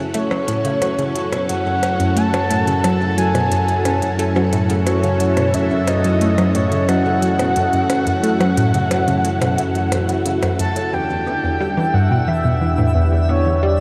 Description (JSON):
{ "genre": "ambient, sequencer-driven space music", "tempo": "89 BPM", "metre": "4/4", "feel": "straight", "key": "F# minor", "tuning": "A4 = 440 Hz", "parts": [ { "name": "string machine, full ensemble", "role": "sustained chords", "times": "0.0-13.8 s", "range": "C#4 to F#5", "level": "-25 LUFS", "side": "equal", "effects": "ensemble chorus" }, { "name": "analog pluck", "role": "riff", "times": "0.0-13.8 s", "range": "E2 to C#4", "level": "-23 LUFS", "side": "equal", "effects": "chorus, phaser, cassette tape, delay" }, { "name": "analog drone", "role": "bass", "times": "0.0-13.8 s", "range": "E2 to F#2", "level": "-24 LUFS", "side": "equal", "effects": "chorus" }, { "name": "breathy flute-like synth lead", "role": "melody", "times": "0.1-13.8 s", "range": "C#5 to A5", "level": "-24 LUFS", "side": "equal", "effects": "subtle chorus, cassette tape, delay" }, { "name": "electronic hi-hat and percussion blips", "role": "percussion", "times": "0.1-10.9 s", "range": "none", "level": "-30 LUFS", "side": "equal", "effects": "overdrive, delay" }, { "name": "twinkling granular texture", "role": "texture", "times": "11.3-13.8 s", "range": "E5", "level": "-34 LUFS", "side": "equal", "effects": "built-in reverb, subtle chorus" } ], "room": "wet huge ambient reverb, RT60 7.6 s", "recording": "dreamy mix soaked in reverb", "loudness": "-18 LUFS", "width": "mono", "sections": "0.0-10.9 A section; 10.9-13.8 B section", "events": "none", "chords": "0.0 F#m7; 10.9 Em7" }